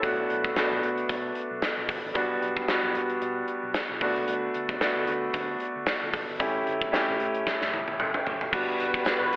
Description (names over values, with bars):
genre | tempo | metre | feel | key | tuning
1980s-style pop | 113 BPM | 4/4 | swing 55% on 16ths | unclear | A4 = 440 Hz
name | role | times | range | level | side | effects
clear baby grand piano | accompaniment | 0.0-9.4 s | G3 to A4 | -27 LUFS | equal | none
vintage muted fingered electric bass | bass | 0.0-9.4 s | F#1 to D3 | -46 LUFS | equal | none
gated 80s drum kit | drums | 0.0-9.4 s | crash cymbal, hi-hat, kick drum, snare drum, toms | -29 LUFS | equal | none
soft string machine | sustained chords | 8.8-9.4 s | D3 to B4 | -29 LUFS | equal | ensemble chorus
tambourine | percussion | 8.5-9.4 s | none | -49 LUFS | right 1 dB | none
room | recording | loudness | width
wet lush hall reverb, RT60 2.7 s | telephone sound | -25 LUFS | side -20 dB against mid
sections
0.0-8.5 A section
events
drum fill 7.5-8.5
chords
0.0 Bm7; 2.2 Gmaj7/B; 4.0 D6; 6.4 A7; 8.5 Gmaj7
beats
| 0.03 0.56 1.09 1.62 | 2.15 2.69 3.22 3.75 | 4.28 4.81 5.34 5.87 | 6.40 6.93 7.46 8.00 | 8.53 9.06